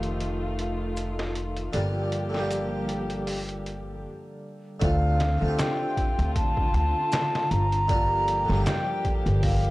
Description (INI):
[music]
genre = trip hop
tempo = 78 BPM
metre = 4/4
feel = swing 56% on 16ths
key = G minor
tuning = A4 = 439 Hz
[part]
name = harpsichord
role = accompaniment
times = 0.0-9.7 s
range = D3 to G4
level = -33 LUFS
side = equal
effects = tremolo, tape echo
[part]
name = dark chamber string section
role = sustained chords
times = 0.0-9.7 s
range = D3 to G4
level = -33 LUFS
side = left 2 dB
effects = vintage 12-bit sampler grit, low-pass filter
[part]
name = upright bass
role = bass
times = 0.0-9.7 s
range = F1 to D2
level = -27 LUFS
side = equal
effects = none
[part]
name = trip hop sampler-style drum kit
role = drums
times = 0.0-9.7 s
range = hi-hat, kick drum, snare drum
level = -29 LUFS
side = equal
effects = high-pass filter on hats, high-pass filter on snare, high-pass filter on kick
[part]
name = maracas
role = percussion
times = 1.0-8.8 s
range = none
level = -46 LUFS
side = left 4 dB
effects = none
[part]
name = baroque flute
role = melody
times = 4.8-9.7 s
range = F5 to Bb5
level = -27 LUFS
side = equal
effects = tape echo
[sound]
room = small room ambience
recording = dry, gritty hardware recording, cassette tape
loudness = -23 LUFS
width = side -19 dB against mid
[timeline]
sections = 0.0-4.8 A section; 4.8-9.7 B section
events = filter sweep on string section 0.0-4.8; break 4.0-4.8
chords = 0.0 F7; 1.7 Gm7; 4.8 Dm7; 7.9 Gm7